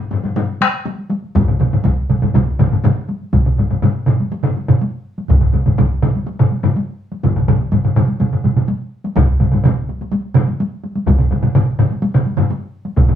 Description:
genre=japanese traditional, taiko drum ensemble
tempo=124 BPM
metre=4/4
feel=straight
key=none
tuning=none
part: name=taiko ensemble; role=percussion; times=0.1-13.1 s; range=none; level=-22 LUFS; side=left 1 dB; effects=none
part: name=taiko ensemble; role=percussion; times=0.1-13.2 s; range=none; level=-19 LUFS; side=left 5 dB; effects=none
part: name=taiko ensemble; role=percussion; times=1.4-13.2 s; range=none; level=-16 LUFS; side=right 2 dB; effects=none
part: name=taiko ensemble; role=percussion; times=1.4-13.1 s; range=none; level=-17 LUFS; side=equal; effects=none
room=wet studio reverb, RT60 0.6 s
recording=band playing live in one room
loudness=-14 LUFS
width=side -10 dB against mid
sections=0.0-3.3 A section; 3.3-13.2 B section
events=speeding up 0.0-13.2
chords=none

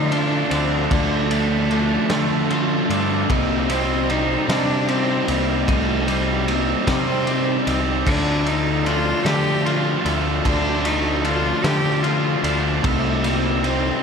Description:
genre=post-rock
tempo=50 BPM (dotted quarters)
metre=6/8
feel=straight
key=unclear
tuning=A4 = 439 Hz
part: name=warm cello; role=melody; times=0.0-14.0 s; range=G3 to G4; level=-24 LUFS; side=equal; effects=slapback echo, digital delay
part: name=twangy electric guitar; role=arpeggios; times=0.0-14.0 s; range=C3 to G4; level=-29 LUFS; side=left 3 dB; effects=ensemble chorus, slapback echo, digital delay
part: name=biting overdriven guitar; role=riff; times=0.0-14.0 s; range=C3 to Eb4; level=-24 LUFS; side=right 10 dB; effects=spring reverb, slapback echo
part: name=overdriven semi-hollow guitar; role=riff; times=0.0-14.0 s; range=C3 to Eb4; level=-25 LUFS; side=left 9 dB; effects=spring reverb, slapback echo
part: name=growling picked electric bass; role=bass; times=0.0-13.9 s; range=C2 to D3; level=-24 LUFS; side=equal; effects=overdrive
part: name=loose indie drum kit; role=drums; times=0.1-13.8 s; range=crash cymbal, kick drum, ride cymbal, snare drum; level=-25 LUFS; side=equal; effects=none
room=moderate lush hall reverb, RT60 3.0 s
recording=big arena sound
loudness=-17 LUFS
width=side -6 dB against mid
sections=0.0-14.0 A section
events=none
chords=0.0 Dm; 3.3 Cm; 8.1 Dm; 12.8 Cm

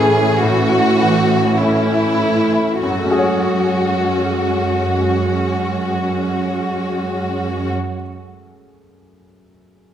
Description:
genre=cinematic, emotional film score for orchestra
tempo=48 BPM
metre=4/4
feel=rubato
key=F# minor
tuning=A4 = 440 Hz
part: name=rich chamber violin section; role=second line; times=0.0-7.7 s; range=E4 to G#4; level=-18 LUFS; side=left 2 dB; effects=none
part: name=bright concert grand piano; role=accompaniment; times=0.0-9.9 s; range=F#2 to C#5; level=-21 LUFS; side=equal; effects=none
part: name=warm symphonic viola section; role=accompaniment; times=0.0-7.7 s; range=E3 to C#4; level=-23 LUFS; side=right 2 dB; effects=none
part: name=rich symphonic cello section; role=bass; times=0.0-7.7 s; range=F#2 to A2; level=-21 LUFS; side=right 3 dB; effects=none
room=wet scoring stage reverb, RT60 1.6 s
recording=none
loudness=-15 LUFS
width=side -9 dB against mid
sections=0.0-2.8 A section; 2.8-7.8 B section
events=slowing down 0.0-2.8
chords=0.0 A; 2.8 F#madd9

